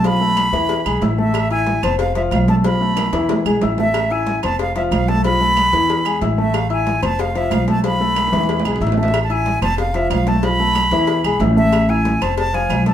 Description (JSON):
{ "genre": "latin, salsa", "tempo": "185 BPM", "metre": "4/4", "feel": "straight", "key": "A harmonic minor", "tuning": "A4 = 440 Hz", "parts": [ { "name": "silver concert flute", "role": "melody", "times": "0.0-12.9 s", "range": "E5 to B5", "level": "-20 LUFS", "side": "right 1 dB", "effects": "none" }, { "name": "dark grand piano", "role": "accompaniment", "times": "0.0-12.9 s", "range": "E3 to E6", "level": "-21 LUFS", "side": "left 3 dB", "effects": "none" }, { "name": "upright bass", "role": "bass", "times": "0.0-12.9 s", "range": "F1 to E2", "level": "-20 LUFS", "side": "right 1 dB", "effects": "none" }, { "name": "agogo bells and timbales", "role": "percussion", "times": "0.0-12.9 s", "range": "none", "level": "-27 LUFS", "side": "right 7 dB", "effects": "none" }, { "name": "congas", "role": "percussion", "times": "0.0-12.9 s", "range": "none", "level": "-25 LUFS", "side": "equal", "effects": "none" }, { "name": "cowbell", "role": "percussion", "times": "0.0-12.9 s", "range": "none", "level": "-28 LUFS", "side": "left 6 dB", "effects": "none" }, { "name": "claves", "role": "percussion", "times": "0.4-12.9 s", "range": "none", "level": "-32 LUFS", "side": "right 7 dB", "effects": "none" } ], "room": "wet studio reverb, RT60 0.8 s", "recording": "band playing live in one room", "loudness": "-15 LUFS", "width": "side -10 dB against mid", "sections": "0.0-9.1 A section; 9.1-12.9 A section", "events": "drum fill 3.0-3.9, 8.2-9.1", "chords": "0.0 Fmaj7#11/B; 0.7 E; 1.3 Am; 2.0 F; 2.6 Fmaj7#11/B; 3.3 E; 3.9 Am; 4.6 F; 5.2 Fmaj7#11/B; 5.9 E; 6.5 Am; 7.2 F; 7.8 Fmaj7#11/B; 8.5 E; 9.1 Am; 9.8 F; 10.4 Fmaj7#11/B; 11.1 E; 11.7 Am; 12.4 F" }